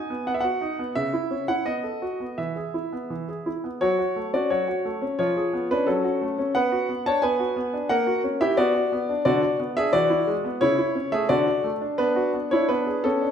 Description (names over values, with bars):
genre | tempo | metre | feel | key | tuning
classical-period piano sonatina | 87 BPM | 2/4 | straight | E major, F# minor from 3.8 s | A4 = 440 Hz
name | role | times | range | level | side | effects
clear baby grand piano | solo | 0.0-13.3 s | C#3 to A5 | -22 LUFS | equal | none
room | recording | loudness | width
wet recital hall reverb, RT60 1.7 s | minimal, uncompressed stereo recording | -22 LUFS | side -8 dB against mid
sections
0.0-3.8 A section; 3.8-13.3 B section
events
none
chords
0.0 B; 1.0 C#madd11; 1.7 B7; 2.4 E; 3.8 F#m; 5.2 C#7/E#; 5.9 F#m; 6.6 Bm; 7.9 F#7/A#; 8.6 Bm; 9.3 Bm/D; 9.9 E; 10.6 A/C#; 11.3 D; 12.0 Bm; 12.7 G#dim/B